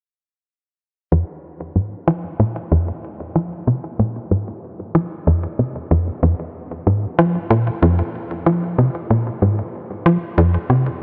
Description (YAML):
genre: ambient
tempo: 94 BPM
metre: 4/4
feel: straight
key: F minor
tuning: A4 = 440 Hz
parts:
  - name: tight sequencer bass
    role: solo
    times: 1.1-10.9 s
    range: F2 to F3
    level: -19 LUFS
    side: equal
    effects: delay
room: moderate huge ambient reverb, RT60 8.3 s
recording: cassette tape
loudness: -19 LUFS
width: mono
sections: 1.1-11.0 A section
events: none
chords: none